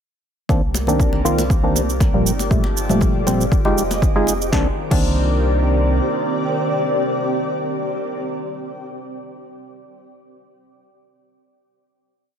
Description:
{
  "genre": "deep house",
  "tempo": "119 BPM",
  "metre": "4/4",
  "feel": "swing 53% on 16ths",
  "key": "C minor",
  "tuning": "A4 = 435 Hz",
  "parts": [
    { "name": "airy breathy pad", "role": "sustained chords", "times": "0.5-8.3 s", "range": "Eb3 to Eb5", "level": "-26 LUFS", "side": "left 1 dB", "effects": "chorus, phaser, sidechain pumping" },
    { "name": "percussive organ stab", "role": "stabs", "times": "0.5-8.7 s", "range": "Bb2 to Ab4", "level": "-21 LUFS", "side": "equal", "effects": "chorus, sidechain pumping, digital delay" },
    { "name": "sub bass with octave", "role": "bass", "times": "0.5-6.0 s", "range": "F1 to C2", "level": "-23 LUFS", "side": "equal", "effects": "sidechain pumping" },
    { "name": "deep house drum kit", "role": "drums", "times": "0.5-5.1 s", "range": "crash cymbal, shaker, snare drum", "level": "-27 LUFS", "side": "right 5 dB", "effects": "none" },
    { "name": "electronic kick drum", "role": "drums", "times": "0.5-5.1 s", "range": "none", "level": "-18 LUFS", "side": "equal", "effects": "none" },
    { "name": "congas", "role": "percussion", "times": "0.5-4.4 s", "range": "none", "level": "-29 LUFS", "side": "left 2 dB", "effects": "none" },
    { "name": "granular cloud pad", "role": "texture", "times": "1.9-8.5 s", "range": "C4 to D5", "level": "-26 LUFS", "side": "right 1 dB", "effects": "built-in reverb, sidechain pumping" }
  ],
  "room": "light reverb",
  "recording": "none",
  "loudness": "-16 LUFS",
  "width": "side -8 dB against mid",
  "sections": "0.5-4.5 breakdown; 4.5-8.6 final chord",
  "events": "none",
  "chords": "0.5 Cm9; 2.3 Gm9; 3.5 Fm9; 4.5 Cm9",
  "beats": "| 0.49 1.00 1.50 2.01 | 2.51 3.02 3.52 4.02 | 4.53 5.03 5.54 6.04 | 6.54 7.05 7.55 8.06"
}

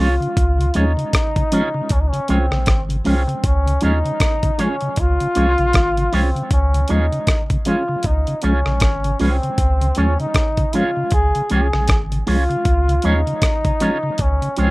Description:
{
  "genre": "roots reggae",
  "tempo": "78 BPM",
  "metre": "4/4",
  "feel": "swing 58% on 16ths",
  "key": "Db major",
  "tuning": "A4 = 441 Hz",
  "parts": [
    { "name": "bright trombone", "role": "melody", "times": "0.0-14.7 s", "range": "C4 to Ab4", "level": "-22 LUFS", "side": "equal", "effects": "tape echo" },
    { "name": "electric guitar with an envelope filter", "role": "accompaniment", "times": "0.0-14.7 s", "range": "Db4 to Db5", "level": "-25 LUFS", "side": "right 4 dB", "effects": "harmonic tremolo, tape echo" },
    { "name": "mellow tonewheel organ", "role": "accompaniment", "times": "0.0-14.7 s", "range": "Db3 to Db4", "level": "-22 LUFS", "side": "equal", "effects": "chorus vibrato, stopped rotary speaker, tape echo" },
    { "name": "warm sub bass", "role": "bass", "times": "0.0-14.7 s", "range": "Ab1 to Eb2", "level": "-18 LUFS", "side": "equal", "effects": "none" },
    { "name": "dusty soul sampler-style drum kit", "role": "drums", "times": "0.2-14.7 s", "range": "hi-hat, kick drum, rim click", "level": "-19 LUFS", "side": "equal", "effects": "none" }
  ],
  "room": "light reverb",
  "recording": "rough home demo mix",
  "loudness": "-15 LUFS",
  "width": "side -21 dB against mid",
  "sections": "0.0-14.7 A section",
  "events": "none",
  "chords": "0.0 Db",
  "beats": "| 0.37 1.14 1.90 2.67 | 3.44 4.21 4.97 5.74 | 6.51 7.28 8.05 8.81 | 9.58 10.35 11.12 11.89 | 12.65 13.42 14.19"
}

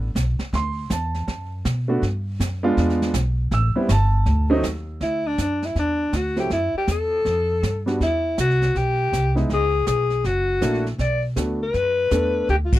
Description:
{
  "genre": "jazz, small-group swing and bop",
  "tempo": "161 BPM",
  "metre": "4/4",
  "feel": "swing 64% on 8ths",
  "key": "unclear",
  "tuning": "A4 = 440 Hz",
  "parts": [
    { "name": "warm baby grand piano", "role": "accompaniment", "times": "0.0-12.5 s", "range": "F#3 to E6", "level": "-23 LUFS", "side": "right 2 dB", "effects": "none" },
    { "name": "upright bass", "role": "bass", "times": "0.0-12.8 s", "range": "F#1 to B2", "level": "-23 LUFS", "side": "equal", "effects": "none" },
    { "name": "jazz brush drum kit", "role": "drums", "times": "0.2-12.8 s", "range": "brushed snare drum, hi-hat, kick drum, ride cymbal, snare drum", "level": "-26 LUFS", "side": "right 1 dB", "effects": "none" },
    { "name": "growling alto saxophone", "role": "melody", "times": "5.0-12.8 s", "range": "D4 to D5", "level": "-21 LUFS", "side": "left 2 dB", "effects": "none" }
  ],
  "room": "light reverb",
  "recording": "dry, close 1970s-style studio recording",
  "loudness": "-19 LUFS",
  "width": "side -15 dB against mid",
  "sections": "0.0-5.0 A section; 5.0-12.8 B section",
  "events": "none",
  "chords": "0.0 B7(no3); 0.5 D13; 2.0 Gmaj7; 2.8 E7b9; 3.5 Am7; 4.3 D7b9; 5.0 Dadd9; 6.5 Esus2; 7.3 Fadd9; 8.0 Emadd9; 9.5 C#5; 10.2 F#7alt; 11.0 Bm7",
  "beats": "0.16 | 0.53 0.91 1.28 1.65 | 2.02 2.40 2.77 3.15 | 3.52 3.89 4.26 4.64 | 5.01 5.39 5.76 6.13 | 6.51 6.88 7.26 7.63 | 8.01 8.38 8.75 9.13 | 9.50 9.87 10.25 10.62 | 10.99 11.37 11.74 12.12 | 12.49"
}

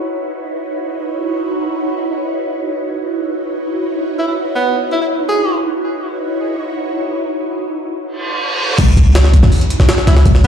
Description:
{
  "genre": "drum and bass, jungle",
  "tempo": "free time",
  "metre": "none",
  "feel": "none",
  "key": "C# minor",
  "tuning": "A4 = 440 Hz",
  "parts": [
    { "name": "ethereal airy pad", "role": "sustained chords", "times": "0.0-10.5 s", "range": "D#4 to C#5", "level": "-19 LUFS", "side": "right 1 dB", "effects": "ensemble chorus, built-in reverb, phaser" },
    { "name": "clear tenor saxophone", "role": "melody", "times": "4.2-5.6, 10.1-10.5 s", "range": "B3 to G#4", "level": "-19 LUFS", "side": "right 2 dB", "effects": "dub echo" },
    { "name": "reverse cymbal and impact", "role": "sound effects", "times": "8.2-10.3 s", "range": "none", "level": "-18 LUFS", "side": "equal", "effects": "none" },
    { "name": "warm 808-style bass", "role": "bass", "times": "8.8-10.5 s", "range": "B1 to F#2", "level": "-10 LUFS", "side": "equal", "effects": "none" },
    { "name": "jungle sampler-style drum kit", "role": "drums", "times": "8.8-10.5 s", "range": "crash cymbal, hi-hat, kick drum, snare drum", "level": "-12 LUFS", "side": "equal", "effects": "none" }
  ],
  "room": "moderate digital room reverb, RT60 1.1 s, small room ambience",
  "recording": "played on a big sound system in a bare room, large studio reverb",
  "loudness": "-14 LUFS",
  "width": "side -8 dB against mid",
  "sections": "0.0-8.8 A section; 8.8-10.5 B section",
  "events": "reverse cymbal 8.2-8.8; drop 8.8-10.5; impact 8.8-10.3",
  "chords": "0.0 C#m11",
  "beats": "free time"
}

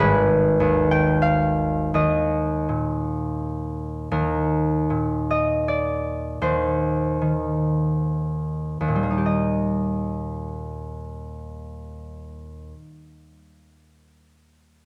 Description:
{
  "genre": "classical, solo harp piece",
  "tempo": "52-100 BPM",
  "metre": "3/4",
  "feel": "rubato",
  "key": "Eb major",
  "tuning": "A4 = 437 Hz",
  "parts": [
    { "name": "concert harp", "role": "solo", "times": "0.0-12.8 s", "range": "Ab1 to G5", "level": "-23 LUFS", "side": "equal", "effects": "none" }
  ],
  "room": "moderate recital hall reverb, RT60 1.5 s",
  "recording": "dark, warm production",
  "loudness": "-23 LUFS",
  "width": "mono",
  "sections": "0.0-4.1 A section; 4.1-9.3 B section; 9.3-14.9 C section",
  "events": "slowing down 3.0-9.3",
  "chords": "0.0 Abm6; 1.9 Eb5; 9.3 Eb",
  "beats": "| 0.00 0.60 1.23 | 1.94 2.67 3.38 | 4.11 4.90 5.68 | 6.42 7.21 8.15 | 9.25 10.28 11.27 | 12.28"
}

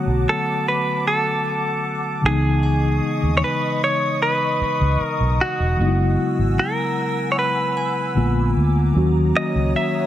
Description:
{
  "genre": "contemporary R&B",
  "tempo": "76 BPM",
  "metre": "4/4",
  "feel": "straight",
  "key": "unclear",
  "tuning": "A4 = 440 Hz",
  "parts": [
    { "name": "direct-recorded clean electric guitar", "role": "melody", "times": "0.0-10.1 s", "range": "F#4 to E5", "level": "-22 LUFS", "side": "right 1 dB", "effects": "none" },
    { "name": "mellow tine electric piano", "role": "accompaniment", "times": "0.0-10.1 s", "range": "C#3 to F#4", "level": "-23 LUFS", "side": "left 2 dB", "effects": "fast stereo tremolo" },
    { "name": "glassy FM pad", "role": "sustained chords", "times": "0.0-10.1 s", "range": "C#5 to E6", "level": "-28 LUFS", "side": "left 2 dB", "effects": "ensemble chorus, built-in reverb" },
    { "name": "vintage muted fingered electric bass", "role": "bass", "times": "0.1-9.7 s", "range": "E1 to D#2", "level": "-19 LUFS", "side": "right 1 dB", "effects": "none" },
    { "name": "glassy synth bell", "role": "texture", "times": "2.6-8.5 s", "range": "G#5", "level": "-37 LUFS", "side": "right 2 dB", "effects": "chorus, phaser, tape echo" }
  ],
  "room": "light reverb, digital ambience",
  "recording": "none",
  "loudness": "-17 LUFS",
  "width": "side -12 dB against mid",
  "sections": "0.0-10.1 A section",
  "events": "none",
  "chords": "0.0 D6; 2.2 C#m9; 5.8 F#9sus4; 8.2 A#7b9; 8.9 D#m7",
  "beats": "0.27 1.05 1.84 | 2.63 3.42 4.21 5.00 | 5.79 6.58 7.37 8.16 | 8.95 9.74"
}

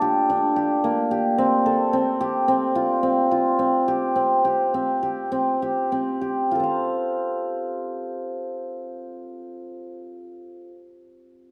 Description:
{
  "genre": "contemporary instrumental, chamber music in an uneven meter",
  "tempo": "198-220 BPM (eighths)",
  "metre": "9/8",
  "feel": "straight",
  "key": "F major",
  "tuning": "A4 = 440 Hz",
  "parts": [
    { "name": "cimbalom", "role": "solo", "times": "0.0-10.7 s", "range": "Bb3 to F5", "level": "-24 LUFS", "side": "equal", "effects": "none" }
  ],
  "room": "moderate recital hall reverb, RT60 1.4 s",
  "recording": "none",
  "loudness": "-23 LUFS",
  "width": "mono",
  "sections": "0.0-6.5 A section; 6.5-9.2 B section",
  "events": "slowing down 1.9-6.5",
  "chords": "0.0 Gmadd9; 1.4 Fadd9; 3.9 C5; 6.5 F",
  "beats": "0.02 0.29 0.57 0.84 1.12 | 1.39 1.67 1.94 2.21 2.49 2.77 3.04 3.32 3.60 | 3.88 4.16 4.45 4.73 5.02 5.32 5.61 5.91 6.22 | 6.52 6.82 7.12 7.42 7.72 8.02 8.32 8.62 8.92"
}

